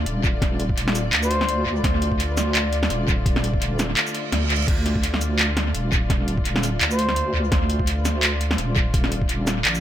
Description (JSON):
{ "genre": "half-time drum and bass", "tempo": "169 BPM", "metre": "4/4", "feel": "swing 56% on 16ths, half-time", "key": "D phrygian", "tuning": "A4 = 440 Hz", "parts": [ { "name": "dark studio string section", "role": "sustained chords", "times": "0.0-9.8 s", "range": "D3 to D5", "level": "-29 LUFS", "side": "left 1 dB", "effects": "sidechain pumping" }, { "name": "deep soft wobble bass", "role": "bass", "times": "0.0-9.8 s", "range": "Eb1 to D2", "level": "-24 LUFS", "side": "equal", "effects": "chorus" }, { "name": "drum and bass drum kit", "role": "drums", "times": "0.1-9.8 s", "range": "crash cymbal, handclaps, hi-hat, shaker, snare drum", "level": "-24 LUFS", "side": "equal", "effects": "tape echo" }, { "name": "electronic kick drum", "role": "drums", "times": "0.2-9.3 s", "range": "none", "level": "-23 LUFS", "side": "equal", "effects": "overdrive" }, { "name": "concert flute", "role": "melody", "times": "1.2-1.7, 6.9-7.4 s", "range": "C5", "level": "-29 LUFS", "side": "left 1 dB", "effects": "vintage 12-bit sampler grit, tape echo" }, { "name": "reverse cymbal", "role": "sound effects", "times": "4.1-4.7 s", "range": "none", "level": "-30 LUFS", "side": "right 8 dB", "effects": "none" } ], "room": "light reverb, digital ambience", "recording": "echo-heavy mix", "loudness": "-19 LUFS", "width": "side -11 dB against mid", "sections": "0.0-9.8 A section", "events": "reverse cymbal 4.1-4.7", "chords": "0.0 Dm", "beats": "0.06 | 0.42 0.77 1.13 1.48 | 1.84 2.19 2.55 2.90 | 3.26 3.61 3.97 4.32 | 4.68 5.03 5.39 5.74 | 6.10 6.45 6.81 7.16 | 7.52 7.87 8.23 8.58 | 8.94 9.29 9.65" }